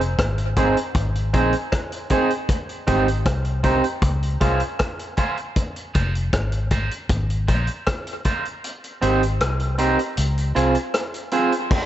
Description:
dub reggae; 78 BPM; 4/4; straight; F minor; A4 = 440 Hz
vintage muted fingered electric bass; bass; 0.0-10.7 s; F1 to Db2; -22 LUFS; left 1 dB
vintage drum kit; drums; 0.0-11.9 s; crash cymbal, hi-hat, kick drum, rim click; -24 LUFS; left 1 dB
electric guitar at the edge of break-up; accompaniment; 0.6-11.5 s; Ab3 to C5; -23 LUFS; right 2 dB; high-pass filter, dub echo
light reverb, small room ambience; nothing above 8.0 kHz; -19 LUFS; side -12 dB against mid
0.0-11.7 A section
filter sweep on clean electric guitar 2.5-8.6; kick muted 8.6-11.7
0.0 Fm7 (rootless); 2.5 Abmaj7; 4.0 Dbmaj7; 5.6 Fm7; 8.6 Abmaj7; 10.2 Dbmaj7

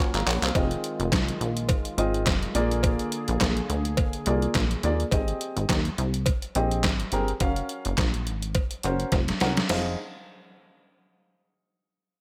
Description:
early-eighties boogie funk; 105 BPM; 4/4; swing 56% on 16ths; F dorian; A4 = 442 Hz
dark grand piano; accompaniment; 0.0-10.0 s; Bb3 to Db6; -31 LUFS; equal
warm analog pad; sustained chords; 0.0-5.1 s; D3 to Bb4; -37 LUFS; equal; chorus
plucky analog bass; bass; 0.1-10.0 s; F1 to Eb2; -30 LUFS; equal
detuned 8-bit digital drum machine; drums; 0.1-9.8 s; crash cymbal, handclaps, hi-hat, kick drum, snare drum; -29 LUFS; equal; gated reverb
cowbell; percussion; 0.6-10.0 s; -37 LUFS; equal
light reverb, digital ambience; -26 LUFS; mono
0.6-9.7 A section; 9.7-12.0 B section
drum fill 0.0-0.6, 9.1-9.7
0.0 Gbmaj7; 0.6 Fm7; 2.6 Bb7; 5.1 Abmaj7; 7.4 Gbmaj7; 9.7 Fm7

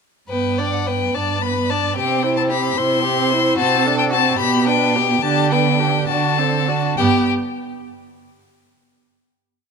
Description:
quick classical-period movement for string quartet; 66-74 BPM (dotted quarters); 6/8; rubato; G major; A4 = 440 Hz
rich violin; melody; 0.3-7.3 s; F#5 to C6; -20 LUFS; left 10 dB
rich violin; second line; 0.3-7.3 s; F#4 to D5; -22 LUFS; left 3 dB
rich viola; accompaniment; 0.3-7.3 s; B3 to E4; -22 LUFS; right 3 dB
rich cello; bass; 0.3-7.3 s; G2 to D3; -22 LUFS; right 7 dB
moderate concert hall reverb, RT60 2.1 s; -16 LUFS; side -5 dB against mid
0.3-7.0 theme; 7.0-8.7 final chord
0.3 G; 2.0 C; 3.6 D7/C; 4.4 G/B; 5.2 G/D; 6.1 D7; 7.0 G

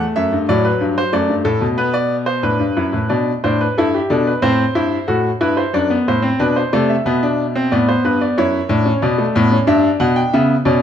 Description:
classical, baroque-style 3-part fugue for grand piano; 91 BPM; 4/4; straight; G major from 3.1 s; A4 = 440 Hz
bright grand piano; solo; 0.0-10.8 s; F#2 to G5; -14 LUFS; left 1 dB
moderate recital hall reverb, RT60 1.4 s; close, detailed microphones; -14 LUFS; side -9 dB against mid
0.0-3.1 A section; 3.1-10.8 B section
0.5 D; 1.8 G/B; 3.1 G; 4.4 Am7; 5.7 D7/F#; 7.1 G/B; 8.4 D/F#; 9.7 Em7/G

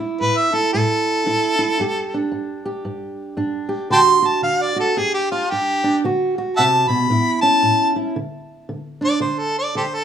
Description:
acoustic country blues, solo or duo; 113 BPM; 4/4; swing 60% on 8ths; A4 = 440 Hz
fingerpicked steel-string acoustic guitar; accompaniment; 0.0-10.0 s; G2 to G4; -22 LUFS; right 2 dB
warm harmonica; melody; 0.2-10.0 s; F4 to C6; -17 LUFS; right 1 dB
little or no reverb; rough home demo mix, studio reverb; -16 LUFS; side -8 dB against mid
0.0-8.2 A section; 8.2-10.0 B section
harmonica solo 0.0-8.2
0.0 A5; 1.8 G5; 3.9 D; 5.0 G5; 6.0 D; 7.1 A; 8.2 N.C.

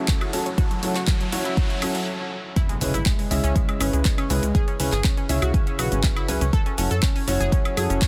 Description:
progressive house; 121 BPM; 4/4; straight; A4 = 438 Hz
lush unison pad; sustained chords; 0.0-2.0 s; C#3 to E4; -41 LUFS; equal
analog pluck; arpeggios; 0.0-8.1 s; F#3 to A4; -31 LUFS; equal; chorus, sidechain pumping, delay
dark grand piano; stabs; 0.0-8.1 s; C#3 to E5; -30 LUFS; equal; sidechain pumping, delay
plucky analog bass; bass; 0.0-8.0 s; F#1 to F#2; -27 LUFS; equal; sidechain pumping, high-pass filter
riser and impact; sound effects; 0.0-4.5 s; -37 LUFS; equal
deep house drum kit; drums; 0.1-8.1 s; handclaps, hi-hat, shaker, woodblock; -32 LUFS; equal; small room ambience
electronic kick drum; drums; 0.1-8.1 s; -24 LUFS; equal; small room ambience
light reverb; dense, heavily limited modern master; -23 LUFS; mono
0.0-2.6 A section; 2.6-8.1 B section
build-up 0.0-2.6; riser 0.0-2.1; stop 2.1-2.6; drop 2.6-8.1; impact 2.6-4.5
0.0 F#m7; 2.6 C#m7; 6.5 F#m7

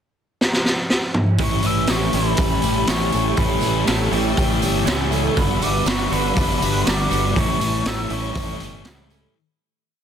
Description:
rock, shoegaze and dream pop; 121 BPM; 4/4; straight; A mixolydian; A4 = 441 Hz
raw garage drum kit; drums; 0.4-9.2 s; hi-hat, kick drum, snare drum, toms; -21 LUFS; equal
breathy hollow jazz flute; melody; 1.4-8.9 s; G5 to E6; -26 LUFS; left 2 dB; slapback echo
ensemble organ-string; sustained chords; 1.4-9.3 s; G4 to B5; -29 LUFS; right 1 dB; ensemble chorus
fingerpicked twelve-string acoustic guitar; arpeggios; 1.4-9.3 s; E3 to G4; -31 LUFS; right 6 dB; wide subtle chorus, slapback echo
direct-recorded clean electric guitar; riff; 1.4-9.3 s; A2 to F#4; -27 LUFS; right 13 dB; reverse reverb
thick fuzz guitar; riff; 1.4-9.3 s; G2 to A3; -25 LUFS; left 10 dB; distortion, wide subtle chorus
fuzz fingered electric bass; bass; 1.4-9.3 s; G1 to C#2; -24 LUFS; equal; overdrive
tambourine; percussion; 1.6-9.2 s; -36 LUFS; right 13 dB
small room ambience; dense, heavily limited modern master; -17 LUFS; side -8 dB against mid
0.0-1.4 pickup bar; 1.4-9.3 A section
drum fill 0.4-1.4; fade-out 7.4-9.3
0.0 N.C.; 1.4 A7; 5.4 Gmaj7; 7.4 A7

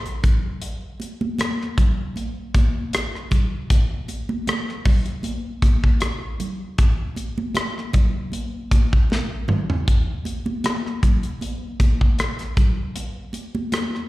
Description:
soul; 78 BPM; 4/4; swing 54% on 16ths
modern studio drum kit; drums; 0.1-14.0 s; hi-hat, kick drum, rim click, snare drum, toms; -19 LUFS; equal
congas; percussion; 0.2-13.9 s; -29 LUFS; right 1 dB; slapback echo
small room ambience; live gig heard through the venue's PA, recital hall reverb; -19 LUFS; side -18 dB against mid
0.0-9.9 A section; 9.9-14.1 A section
drum fill 9.1-9.9

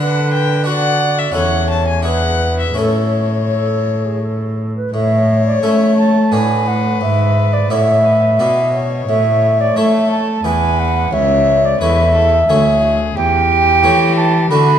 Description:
classical, baroque-style sonata movement with continuo; 88 BPM; 3/4; rubato; A major; A4 = 440 Hz
warm violin; melody; 0.0-14.8 s; F#4 to A5; -21 LUFS; left 7 dB
bright baroque flute; second line; 0.0-14.8 s; G#4 to B5; -16 LUFS; right 3 dB
harpsichord; accompaniment; 0.0-14.8 s; C#2 to D5; -21 LUFS; left 2 dB
warm cello; bass; 0.0-14.8 s; C#2 to A3; -17 LUFS; equal
wet recital hall reverb, RT60 1.7 s; dark, warm production, lossy compression artefacts; -12 LUFS; side -9 dB against mid
0.0-4.9 A section; 4.9-14.8 B section
0.0 G/D; 0.7 Bm/D; 1.4 A/E; 2.1 E7; 2.8 A; 6.3 Bm7/A; 7.0 E7/G#; 9.1 A; 10.4 E; 11.1 A/C#; 13.2 A7/E

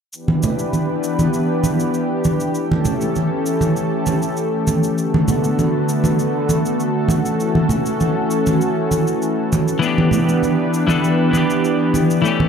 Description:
sunset chillout; 99 BPM; 4/4; straight; E dorian; A4 = 441 Hz
lush unison pad; sustained chords; 0.1-12.5 s; D3 to B4; -19 LUFS; left 1 dB; chorus
shaker; drums; 0.1-12.4 s; -33 LUFS; equal; overdrive, small room ambience
congas; percussion; 0.3-12.5 s; -20 LUFS; right 2 dB
twelve-string electric guitar; accompaniment; 9.8-12.5 s; E3 to A4; -16 LUFS; moving between left 5 dB and right 3 dB; auto-pan, tape echo
moderate plate reverb, RT60 2.1 s; dark, warm production; -16 LUFS; side -7 dB against mid
0.1-12.5 A section
0.1 Em7; 2.6 A7; 5.0 D6; 7.1 F#m7; 9.8 Em7

